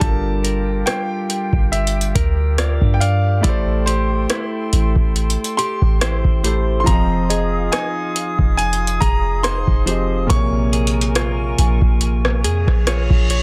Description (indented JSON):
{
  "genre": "contemporary R&B",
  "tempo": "70 BPM",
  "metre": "4/4",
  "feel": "swing 54% on 16ths",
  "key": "unclear",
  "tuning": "A4 = 439 Hz",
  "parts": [
    { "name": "clear baby grand piano", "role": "melody", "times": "0.0-12.8 s", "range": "C5 to Db6", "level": "-27 LUFS", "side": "equal", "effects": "digital delay" },
    { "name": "clear concert grand piano", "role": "accompaniment", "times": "0.0-13.4 s", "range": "Bb2 to Eb5", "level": "-29 LUFS", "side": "equal", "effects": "none" },
    { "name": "small flute group", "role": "sustained chords", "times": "0.0-13.4 s", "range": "F4 to Eb6", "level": "-32 LUFS", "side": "equal", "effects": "sidechain pumping" },
    { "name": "direct-recorded clean electric guitar", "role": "arpeggios", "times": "0.0-13.4 s", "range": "F3 to D5", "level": "-27 LUFS", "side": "equal", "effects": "none" },
    { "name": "warm 808-style bass", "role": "bass", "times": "0.0-13.4 s", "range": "F1 to G2", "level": "-21 LUFS", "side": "equal", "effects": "none" },
    { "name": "booming analog drum machine", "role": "drums", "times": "0.0-13.4 s", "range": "hi-hat, kick drum, rim click", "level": "-21 LUFS", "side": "equal", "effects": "none" },
    { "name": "soft synth bell", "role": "texture", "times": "7.3-12.6 s", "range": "Eb5 to Ab5", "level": "-33 LUFS", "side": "equal", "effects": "chorus, phaser, digital delay" },
    { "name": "reverse cymbal", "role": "sound effects", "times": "12.6-13.4 s", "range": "none", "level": "-31 LUFS", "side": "equal", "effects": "none" }
  ],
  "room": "little or no reverb",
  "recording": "dense, heavily limited modern master",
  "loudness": "-18 LUFS",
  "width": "mono",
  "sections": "0.0-13.4 A section",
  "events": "reverse cymbal 12.6-13.4",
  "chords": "0.0 Gm7; 3.4 Am7; 6.9 Fm7; 10.3 Bbm7",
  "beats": "| 0.01 0.87 1.73 2.59 | 3.44 4.30 5.16 6.01 | 6.87 7.73 8.59 9.44 | 10.30 11.16 12.02 12.87"
}